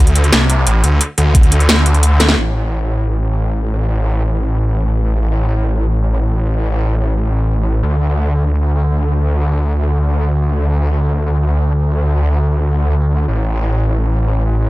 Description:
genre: dark technical drum and bass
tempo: free time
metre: none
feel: none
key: unclear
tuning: A4 = 438 Hz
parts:
  - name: snarling distorted saw bass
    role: bass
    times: 0.0-14.7 s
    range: A1 to D2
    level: -13 LUFS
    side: equal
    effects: distortion, overdrive, sidechain pumping
  - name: drum and bass drum kit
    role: drums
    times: 0.1-2.4 s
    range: hi-hat, snare drum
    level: -15 LUFS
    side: equal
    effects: none
  - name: electronic kick drum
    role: drums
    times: 1.3-1.4 s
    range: none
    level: -10 LUFS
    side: equal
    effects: none
room: little or no reverb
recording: none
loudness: -13 LUFS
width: side -19 dB against mid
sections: 0.0-2.4 A section; 2.4-14.7 B section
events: drum fill 2.2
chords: none

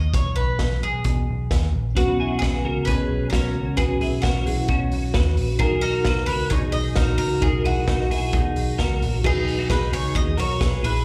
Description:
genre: jangly indie pop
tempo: 132 BPM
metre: 4/4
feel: straight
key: B major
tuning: A4 = 437 Hz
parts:
  - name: bowl-back mandolin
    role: melody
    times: 0.0-11.0 s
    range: F#4 to D#5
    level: -31 LUFS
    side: equal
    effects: slapback echo
  - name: vintage muted picked electric bass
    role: bass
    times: 0.0-11.0 s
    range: A#1 to B2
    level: -26 LUFS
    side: equal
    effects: none
  - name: raw garage drum kit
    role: drums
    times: 0.1-10.9 s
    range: crash cymbal, hi-hat, kick drum, snare drum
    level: -27 LUFS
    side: equal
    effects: none
  - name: reed electric piano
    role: accompaniment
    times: 1.9-11.0 s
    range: B3 to B4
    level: -31 LUFS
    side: equal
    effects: fast tremolo, slapback echo
  - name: twelve-string electric guitar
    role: arpeggios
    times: 2.0-11.0 s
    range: C#4 to B4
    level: -30 LUFS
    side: equal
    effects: ensemble chorus
room: light reverb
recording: live gig heard through the venue's PA, club reverb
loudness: -22 LUFS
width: mono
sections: 0.0-9.2 A section; 9.2-11.0 B section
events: none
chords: 0.0 G#m; 2.0 Bsus2

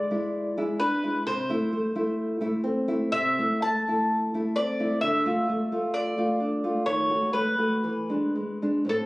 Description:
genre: romantic duo for mandolin and classical guitar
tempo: 54-66 BPM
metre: 4/4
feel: rubato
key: A minor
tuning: A4 = 440 Hz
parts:
  - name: mandolin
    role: melody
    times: 0.0-9.1 s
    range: A4 to A5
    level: -27 LUFS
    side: equal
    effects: none
  - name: nylon-string guitar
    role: accompaniment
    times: 0.0-9.1 s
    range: A2 to F#4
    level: -26 LUFS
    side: equal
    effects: none
room: moderate recital hall reverb, RT60 1.6 s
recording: recorded on a phone in the room, club ambience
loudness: -24 LUFS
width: side -20 dB against mid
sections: 0.0-9.1 A section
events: none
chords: 0.0 E7; 1.3 Am/C; 5.0 Dmadd9; 6.9 B7/D#; 7.8 E7

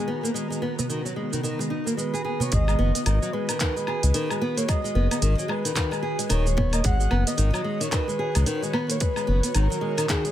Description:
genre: organic downtempo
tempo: 111 BPM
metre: 4/4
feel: swing 59% on 16ths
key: G# minor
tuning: A4 = 436 Hz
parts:
  - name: breathy flute-like synth lead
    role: melody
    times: 0.0-10.3 s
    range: G#4 to F#5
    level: -30 LUFS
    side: equal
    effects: lush chorus, digital delay
  - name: ethereal airy pad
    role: sustained chords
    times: 0.0-10.3 s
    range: D#3 to C#5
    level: -33 LUFS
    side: equal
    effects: ensemble chorus, built-in reverb, sidechain pumping
  - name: nylon-string guitar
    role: arpeggios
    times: 0.0-10.3 s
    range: D#3 to G#4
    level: -28 LUFS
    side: equal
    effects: digital delay
  - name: twinkling granular texture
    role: texture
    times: 0.0-2.5 s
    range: A#5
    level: -46 LUFS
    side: right 2 dB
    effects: built-in reverb
  - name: organic electronic drum kit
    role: drums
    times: 0.3-10.3 s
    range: handclaps, hi-hat, shaker, woodblock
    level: -30 LUFS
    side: equal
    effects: none
  - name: darbuka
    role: percussion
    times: 0.3-2.5 s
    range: none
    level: -34 LUFS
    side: right 2 dB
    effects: none
  - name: round analog bass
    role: bass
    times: 2.5-9.7 s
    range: D#1 to C#2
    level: -21 LUFS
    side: equal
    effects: tube saturation
  - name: electronic kick drum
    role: drums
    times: 2.5-10.2 s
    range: none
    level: -25 LUFS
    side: equal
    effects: none
room: little or no reverb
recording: none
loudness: -22 LUFS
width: side -12 dB against mid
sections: 0.0-2.5 A section; 2.5-10.3 B section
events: none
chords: 0.0 G#m7

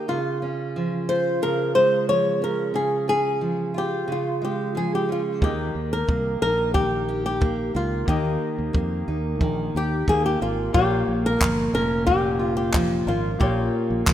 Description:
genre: acoustic pop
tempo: 90 BPM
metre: 4/4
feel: straight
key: Eb mixolydian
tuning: A4 = 438 Hz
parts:
  - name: flamenco guitar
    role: melody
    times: 0.0-14.1 s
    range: F4 to Db5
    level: -24 LUFS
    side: left 2 dB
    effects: none
  - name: fingerpicked steel-string acoustic guitar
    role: accompaniment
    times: 0.0-14.1 s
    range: Bb2 to G4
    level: -26 LUFS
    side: right 1 dB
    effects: none
  - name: bright upright piano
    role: accompaniment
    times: 5.4-14.1 s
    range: Bb3 to Eb5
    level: -36 LUFS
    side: left 5 dB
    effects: none
  - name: fingered electric bass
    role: bass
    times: 5.4-14.1 s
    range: F1 to F2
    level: -27 LUFS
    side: equal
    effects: none
  - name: compact cocktail drum kit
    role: drums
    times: 5.4-14.1 s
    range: handclaps, kick drum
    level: -22 LUFS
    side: equal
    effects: none
room: moderate lush hall reverb, RT60 2.0 s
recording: rough home demo mix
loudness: -20 LUFS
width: side -11 dB against mid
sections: 0.0-5.4 A section; 5.4-14.1 B section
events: none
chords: 0.1 Db; 5.4 Eb; 10.7 Bbm

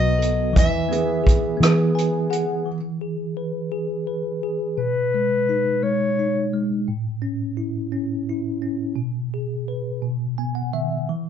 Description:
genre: acoustic folk-pop ballad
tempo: 57 BPM (dotted quarters)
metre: 6/8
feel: straight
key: E major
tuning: A4 = 438 Hz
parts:
  - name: picked steel-string acoustic guitar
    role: melody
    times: 0.0-2.3 s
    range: D#5 to E5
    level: -25 LUFS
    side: left 1 dB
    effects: none
  - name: bell-like tine electric piano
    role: accompaniment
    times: 0.0-11.3 s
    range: A2 to G#5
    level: -24 LUFS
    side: equal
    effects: fast stereo tremolo
  - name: felt-muted upright piano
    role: arpeggios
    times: 0.0-2.8 s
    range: E3 to G#4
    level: -25 LUFS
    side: right 3 dB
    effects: none
  - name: vintage muted fingered electric bass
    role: bass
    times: 0.0-2.4 s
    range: B1 to E3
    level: -22 LUFS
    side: equal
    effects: none
  - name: unplugged drum kit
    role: drums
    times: 0.2-2.5 s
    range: hi-hat, kick drum, rim click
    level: -19 LUFS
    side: equal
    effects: none
  - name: dark clarinet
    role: second line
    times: 4.8-6.5 s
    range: B4 to C#5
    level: -21 LUFS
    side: left 4 dB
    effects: none
room: moderate studio reverb, RT60 0.9 s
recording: dark, warm production, nothing above 7.8 kHz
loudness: -20 LUFS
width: side -8 dB against mid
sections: 0.0-2.7 A section; 2.7-11.1 B section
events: clarinet solo 2.7-11.1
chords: 0.0 B7; 0.6 E; 4.8 B6; 6.9 A; 9.0 G#m/B; 10.0 B

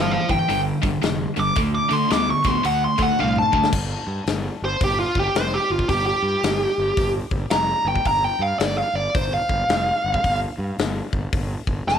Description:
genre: blues rock power trio and southern rock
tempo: 111 BPM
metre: 4/4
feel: swing 63% on 8ths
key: unclear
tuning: A4 = 440 Hz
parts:
  - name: bluesy overdriven lead guitar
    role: melody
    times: 0.0-12.0 s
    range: F4 to D6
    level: -21 LUFS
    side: equal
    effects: distortion
  - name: tight distorted guitar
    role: riff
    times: 0.0-3.7 s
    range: G2 to B3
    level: -23 LUFS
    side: right 1 dB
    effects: distortion
  - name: fuzz fingered electric bass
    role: bass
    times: 0.0-12.0 s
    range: F1 to D3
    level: -27 LUFS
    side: right 1 dB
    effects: overdrive
  - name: big rock drum kit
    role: drums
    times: 0.3-12.0 s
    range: crash cymbal, hi-hat, kick drum, snare drum, toms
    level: -25 LUFS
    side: left 2 dB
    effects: none
room: moderate spring reverb, RT60 1.6 s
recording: 1960s-style stereo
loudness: -19 LUFS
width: side -8 dB against mid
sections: 0.0-3.7 A section; 3.7-12.0 B section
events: drum fill 3.2-3.7; lead electric guitar solo 3.7-12.0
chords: 0.0 G5; 1.6 D5; 3.7 Fsus2

